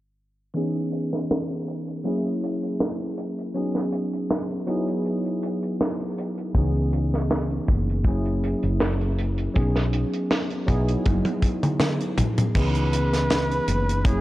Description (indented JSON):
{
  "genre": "vaporwave",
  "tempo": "80 BPM",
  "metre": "4/4",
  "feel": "swing 54% on 16ths",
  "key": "unclear",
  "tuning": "A4 = 436 Hz",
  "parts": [
    { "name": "tine electric piano", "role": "accompaniment", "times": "0.5-14.2 s", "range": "E3 to G#4", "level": "-26 LUFS", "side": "equal", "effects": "analog chorus, vintage 12-bit sampler grit, tape echo" },
    { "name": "tight funk drum kit", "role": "drums", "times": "0.6-14.2 s", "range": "crash cymbal, hi-hat, snare drum, toms", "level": "-27 LUFS", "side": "equal", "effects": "low-pass filter on hats, low-pass filter on toms, low-pass filter on cymbals, low-pass filter on snare, low-pass filter on room" },
    { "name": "woody fretless electric bass", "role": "bass", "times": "6.5-14.2 s", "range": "F#1 to C#2", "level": "-24 LUFS", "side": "equal", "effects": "ensemble chorus" },
    { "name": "kick drum", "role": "drums", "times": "6.5-14.2 s", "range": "none", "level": "-22 LUFS", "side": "equal", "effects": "none" },
    { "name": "warm flugelhorn", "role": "melody", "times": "12.6-14.2 s", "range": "G#4 to B4", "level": "-27 LUFS", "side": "equal", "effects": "none" }
  ],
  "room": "light reverb, small room ambience",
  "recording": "dry, gritty hardware recording, cassette tape, low-pass filter",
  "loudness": "-22 LUFS",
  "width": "side -16 dB against mid",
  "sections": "0.6-12.6 A section; 12.6-14.2 B section",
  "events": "filter sweep on drum 0.6-12.6; filter sweep 0.6-12.6; drum fill 11.1-12.6",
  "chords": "0.6 C#m7; 2.1 F#9; 3.6 B6; 4.7 Emaj7; 6.6 C#m7; 8.1 F#9; 9.6 B6; 10.7 Emaj7; 12.6 C#m7"
}